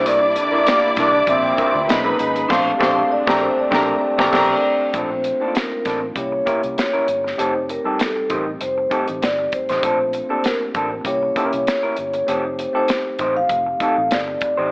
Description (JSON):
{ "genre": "lush 1970s-style soul", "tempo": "98 BPM", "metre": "4/4", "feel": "swing 54% on 16ths", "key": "Bb major", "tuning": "A4 = 440 Hz", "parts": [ { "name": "vibraphone with soft mallets", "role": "melody", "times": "0.0-14.7 s", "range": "A4 to F5", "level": "-20 LUFS", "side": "equal", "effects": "slapback echo" }, { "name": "warm symphonic violin section", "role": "second line", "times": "0.0-4.5 s", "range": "Bb4 to D6", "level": "-21 LUFS", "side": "equal", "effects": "none" }, { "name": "tine electric piano", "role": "accompaniment", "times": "0.0-14.7 s", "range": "G3 to A4", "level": "-25 LUFS", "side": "equal", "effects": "none" }, { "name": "muted studio string section", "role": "sustained chords", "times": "0.0-4.9 s", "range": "C3 to B4", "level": "-28 LUFS", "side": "equal", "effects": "none" }, { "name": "electric guitar through a small old amp", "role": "riff", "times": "0.0-14.7 s", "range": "C4 to C5", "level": "-24 LUFS", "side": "equal", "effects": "none" }, { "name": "vintage muted fingered electric bass", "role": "bass", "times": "0.0-14.7 s", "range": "F1 to D2", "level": "-36 LUFS", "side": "equal", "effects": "none" }, { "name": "modern studio drum kit", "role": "drums", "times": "0.1-14.6 s", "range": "crash cymbal, hi-hat, kick drum, snare drum", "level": "-24 LUFS", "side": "equal", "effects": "none" }, { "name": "warm trombone section", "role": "stabs", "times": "0.4-2.2 s", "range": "Bb2 to D4", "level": "-24 LUFS", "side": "equal", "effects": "none" } ], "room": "light reverb, small room reverb", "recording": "AM radio sound", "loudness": "-16 LUFS", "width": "side -30 dB against mid", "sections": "0.0-4.9 A section; 4.9-14.7 B section", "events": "band accent 2.5-4.9", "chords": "0.0 C9; 1.9 Bmaj13; 2.5 Bbmaj13; 4.9 Bbmaj9; 6.2 C7b9; 7.4 F9; 9.8 Bbmaj9; 11.1 C7b9; 12.3 F9" }